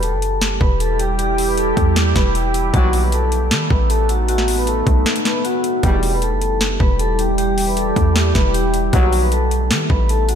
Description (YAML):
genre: hip hop, trap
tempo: 155 BPM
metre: 4/4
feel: half-time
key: E harmonic minor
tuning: A4 = 439 Hz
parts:
  - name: vibraphone with medium mallets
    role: melody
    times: 0.0-10.4 s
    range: F#4 to B5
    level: -22 LUFS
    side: left 2 dB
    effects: diffuse ambient delay
  - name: deep dark ambient pad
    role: sustained chords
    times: 0.3-10.4 s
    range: G3 to G4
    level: -22 LUFS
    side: right 2 dB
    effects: chorus, built-in reverb
  - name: warm 808-style bass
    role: bass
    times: 0.0-10.4 s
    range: E1 to D#3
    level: -19 LUFS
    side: equal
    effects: none
  - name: trap drum kit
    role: drums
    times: 0.0-10.4 s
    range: finger snaps, hi-hat, kick drum, snare drum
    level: -20 LUFS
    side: equal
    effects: overdrive
  - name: clear brass ensemble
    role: stabs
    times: 2.7-3.1, 5.8-6.2, 8.9-9.3 s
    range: D#2 to G3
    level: -25 LUFS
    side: left 2 dB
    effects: none
room: moderate lush hall reverb, RT60 1.6 s, digital ambience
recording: dreamy mix soaked in reverb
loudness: -14 LUFS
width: side -8 dB against mid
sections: 0.0-5.8 A section; 5.8-10.4 A section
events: kick muted 5.1-5.8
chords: 0.0 Emadd9; 2.7 B7; 5.8 Emadd9; 8.9 B7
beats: 0.03 0.41 0.80 | 1.19 1.58 1.96 2.35 | 2.74 3.12 3.51 3.90 | 4.29 4.67 5.06 5.45 | 5.83 6.22 6.61 7.00 | 7.38 7.77 8.16 8.54 | 8.93 9.32 9.71 10.09